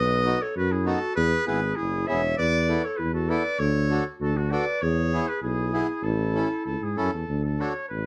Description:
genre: alpine folk, alpine dance band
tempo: 98 BPM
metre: 2/4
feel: straight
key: A major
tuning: A4 = 437 Hz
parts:
  - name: clear trumpet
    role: melody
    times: 0.0-8.1 s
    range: F#4 to E5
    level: -31 LUFS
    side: equal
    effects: none
  - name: warm clarinet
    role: second line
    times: 0.0-7.0 s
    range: D4 to C#5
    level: -33 LUFS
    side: equal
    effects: none
  - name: mellow tuba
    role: bass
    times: 0.0-8.1 s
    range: E1 to G#2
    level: -28 LUFS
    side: equal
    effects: none
  - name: accordion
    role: accompaniment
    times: 0.3-7.7 s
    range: B3 to A4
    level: -31 LUFS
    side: equal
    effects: none
room: moderate studio reverb, RT60 0.6 s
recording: dark, warm production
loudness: -25 LUFS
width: mono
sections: 0.0-7.3 A section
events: none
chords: 0.0 B; 1.2 Eadd9; 2.4 Asus2/E; 3.6 D; 4.8 E; 6.0 A; 7.3 D

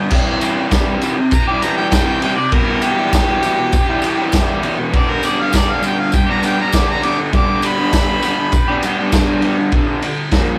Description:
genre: garage rock duo or trio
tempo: 100 BPM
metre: 4/4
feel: straight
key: G major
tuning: A4 = 438 Hz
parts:
  - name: crunchy overdriven guitar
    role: riff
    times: 0.0-10.6 s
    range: E2 to G4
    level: -21 LUFS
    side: equal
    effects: none
  - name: raw garage drum kit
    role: drums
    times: 0.1-10.5 s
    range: crash cymbal, kick drum, ride cymbal, snare drum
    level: -19 LUFS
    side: equal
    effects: none
  - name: tambourine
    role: percussion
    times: 0.4-9.3 s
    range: none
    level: -34 LUFS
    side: equal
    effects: none
  - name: clear harmonica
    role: melody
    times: 1.3-8.8 s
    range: G4 to D6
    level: -22 LUFS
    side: equal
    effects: overdrive
room: light reverb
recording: rough rehearsal-room recording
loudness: -16 LUFS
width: mono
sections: 0.0-9.7 A section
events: harmonica solo 0.0-9.7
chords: 0.1 C; 2.5 Em; 4.9 G; 9.7 G5

